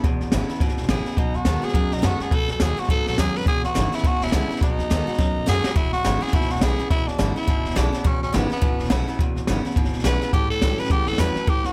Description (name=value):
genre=rockabilly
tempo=210 BPM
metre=4/4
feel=swing 59% on 8ths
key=E major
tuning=A4 = 435 Hz
part: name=picked steel-string acoustic guitar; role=accompaniment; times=0.0-11.7 s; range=E2 to F#4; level=-31 LUFS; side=equal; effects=none
part: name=electric guitar through a small old amp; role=riff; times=0.0-11.7 s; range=E2 to G#3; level=-34 LUFS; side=equal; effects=spring reverb
part: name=upright bass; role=bass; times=0.0-11.7 s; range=E1 to F#2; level=-28 LUFS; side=equal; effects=none
part: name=jazz brush drum kit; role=drums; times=0.0-11.7 s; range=hi-hat, kick drum, snare drum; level=-25 LUFS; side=equal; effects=none
part: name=raspy tenor saxophone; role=melody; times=0.9-11.7 s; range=B3 to B4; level=-29 LUFS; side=equal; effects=tape echo
room=light reverb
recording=none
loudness=-22 LUFS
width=mono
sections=0.0-5.8 A section; 5.8-11.7 A section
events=drum fill 5.2-5.8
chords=0.0 E7; 1.2 B7; 3.5 E7; 4.6 B7; 5.8 E7; 10.3 A7